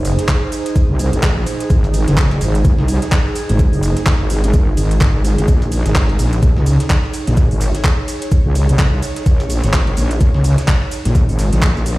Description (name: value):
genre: bass house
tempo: 127 BPM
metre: 4/4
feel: swing 59% on 16ths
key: unclear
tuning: A4 = 437 Hz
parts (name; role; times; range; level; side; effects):
- wobble bass; bass; 0.0-12.0 s; Gb1 to Db2; -15 LUFS; equal; chorus, overdrive, sidechain pumping
- breakbeat sampler-style drum kit; drums; 0.0-12.0 s; hi-hat, shaker, snare drum; -31 LUFS; equal; high-pass filter on snare, sidechain pumping on perc, high-pass filter on perc, sidechain pumping on hats, high-pass filter on hats, high-pass filter on room
- garage drum kit; drums; 0.0-12.0 s; handclaps, hi-hat, ride cymbal, shaker; -24 LUFS; equal; none
- airy breathy pad; texture; 0.0-12.0 s; Eb4 to Db5; -24 LUFS; right 2 dB; chorus, sidechain pumping
- electronic kick drum; drums; 0.3-11.7 s; none; -13 LUFS; equal; none
room: little or no reverb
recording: played on a big sound system in a bare room, large studio reverb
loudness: -12 LUFS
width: side -19 dB against mid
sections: 0.0-12.0 A section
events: none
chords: 0.0 Ab; 5.5 Bbm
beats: 0.28 0.76 1.23 | 1.70 2.17 2.65 3.12 | 3.59 4.06 4.54 5.01 | 5.48 5.95 6.43 6.90 | 7.37 7.84 8.32 8.79 | 9.26 9.73 10.21 10.68 | 11.15 11.62